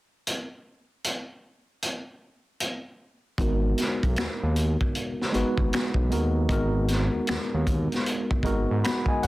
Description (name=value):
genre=R&B, neo-soul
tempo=77 BPM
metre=4/4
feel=swing 63% on 16ths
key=G# minor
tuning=A4 = 440 Hz
part: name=crunchy breakbeat drum kit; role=drums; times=0.3-9.3 s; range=finger snaps, hi-hat, kick drum, snare drum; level=-28 LUFS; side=equal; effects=none
part: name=tine electric piano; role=accompaniment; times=3.4-9.3 s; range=G#3 to B5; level=-27 LUFS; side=equal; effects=medium stereo tremolo, low-pass filter
part: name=smooth synth bass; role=bass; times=3.4-9.3 s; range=G#1 to G#2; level=-26 LUFS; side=equal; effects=none
room=light reverb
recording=dense, heavily limited modern master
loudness=-24 LUFS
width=side -18 dB against mid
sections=0.3-3.4 A section; 3.4-9.3 B section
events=filter sweep on tine electric piano 3.4-9.3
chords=0.3 N.C.; 3.4 G#m7